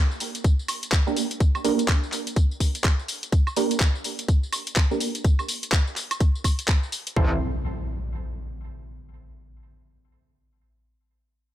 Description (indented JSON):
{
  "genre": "bass house",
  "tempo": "125 BPM",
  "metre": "4/4",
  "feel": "swing 60% on 16ths",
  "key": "unclear",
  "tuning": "A4 = 440 Hz",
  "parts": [
    { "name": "garage drum kit", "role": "drums", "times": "0.1-7.1 s", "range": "handclaps, hi-hat, tambourine, woodblock", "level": "-27 LUFS", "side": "equal", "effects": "none" },
    { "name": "electronic kick drum", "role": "drums", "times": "0.4-7.3 s", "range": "none", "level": "-20 LUFS", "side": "equal", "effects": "none" },
    { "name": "orchestra-hit-like synth stab", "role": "stabs", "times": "1.1-7.4 s", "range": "Bb3 to C5", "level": "-28 LUFS", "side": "right 4 dB", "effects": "built-in reverb, sidechain pumping, digital delay" },
    { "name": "metallic wobble bass", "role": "bass", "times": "7.2-7.4 s", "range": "A1", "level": "-26 LUFS", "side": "equal", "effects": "chorus, overdrive, sidechain pumping" },
    { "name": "impact", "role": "sound effects", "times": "7.3-9.1 s", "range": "none", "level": "-31 LUFS", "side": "equal", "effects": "none" }
  ],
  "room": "little or no reverb",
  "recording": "none",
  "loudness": "-21 LUFS",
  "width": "side -13 dB against mid",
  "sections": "0.0-7.2 A section; 7.2-9.1 B section",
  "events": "filter sweep on synth stab 0.0-7.2",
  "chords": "0.0 Gm; 7.2 Am"
}